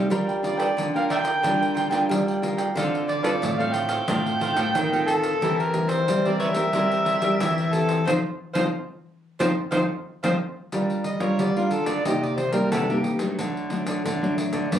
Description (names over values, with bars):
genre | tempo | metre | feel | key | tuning
samba and choro | 90 BPM | 4/4 | straight | G minor from 10.7 s | A4 = 440 Hz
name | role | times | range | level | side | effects
cavaquinho | accompaniment | 0.0-10.3 s | D4 to G5 | -32 LUFS | right 3 dB | none
nylon-string guitar | accompaniment | 0.0-14.8 s | G2 to Bb4 | -27 LUFS | left 2 dB | none
nylon-string guitar | bass | 0.0-14.8 s | G2 to G3 | -26 LUFS | right 1 dB | none
pandeiro | percussion | 0.1-14.8 s | none | -32 LUFS | left 2 dB | none
overdriven harmonica | melody | 0.4-14.8 s | E4 to G5 | -24 LUFS | right 1 dB | none
room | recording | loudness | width
moderate studio reverb, RT60 0.6 s | recorded on a phone in the room, club reverb, compression | -21 LUFS | side -10 dB against mid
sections
0.0-10.7 A section; 10.7-14.8 B section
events
band accent 8.1-10.7; harmonica solo 10.7-14.8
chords
0.1 Gm7; 2.8 Dm7; 5.4 C7/E; 8.1 F5; 10.7 Gm7; 12.1 Cm7; 13.4 D